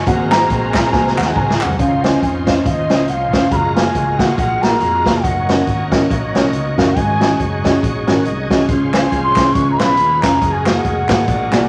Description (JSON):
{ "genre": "uptempo gospel", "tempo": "139 BPM", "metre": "4/4", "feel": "swing 58% on 8ths", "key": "Db major", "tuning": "A4 = 440 Hz", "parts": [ { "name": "dark concert grand piano", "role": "accompaniment", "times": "0.0-11.7 s", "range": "Ab2 to Bb5", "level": "-20 LUFS", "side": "equal", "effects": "none" }, { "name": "bright tonewheel organ", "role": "sustained chords", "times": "0.0-11.7 s", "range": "Eb3 to Ab5", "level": "-26 LUFS", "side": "equal", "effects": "slow rotary speaker, overdrive, chorus vibrato" }, { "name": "dark studio string section", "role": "sustained chords", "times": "0.0-1.8 s", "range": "C5 to Bb5", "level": "-26 LUFS", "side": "equal", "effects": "none" }, { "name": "fingered electric bass", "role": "bass", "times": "0.0-11.7 s", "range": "F1 to F2", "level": "-25 LUFS", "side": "equal", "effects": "none" }, { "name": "swinging big-band drum kit", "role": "drums", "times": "0.1-11.6 s", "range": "hi-hat, kick drum, snare drum, toms", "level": "-21 LUFS", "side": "equal", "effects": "none" }, { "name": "group handclap", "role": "percussion", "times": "0.3-1.7, 8.9-11.6 s", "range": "none", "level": "-30 LUFS", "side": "equal", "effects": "none" }, { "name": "bright reedy bansuri", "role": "melody", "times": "1.4-11.7 s", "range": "Eb5 to Db6", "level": "-21 LUFS", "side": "equal", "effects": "none" } ], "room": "wet large studio reverb, RT60 1.2 s", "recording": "none", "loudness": "-15 LUFS", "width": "mono", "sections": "0.0-1.8 A section; 1.8-11.7 B section", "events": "grand piano solo 0.0-1.8; drum fill 0.9-1.8; tonewheel organ fill 7.8-8.7", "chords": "0.1 Ab9; 1.8 Dbmaj9; 3.5 Gbmaj9; 5.2 Ebm7/Gb; 7.0 Ab7sus4; 8.7 Dbmaj7; 9.6 Db7; 10.4 Gbmaj9", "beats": "| 0.07 0.50 0.93 1.36 | 1.79 2.22 2.65 3.08 | 3.52 3.95 4.38 4.81 | 5.24 5.67 6.10 6.53 | 6.96 7.40 7.83 8.26 | 8.69 9.12 9.55 9.98 | 10.41 10.85 11.28" }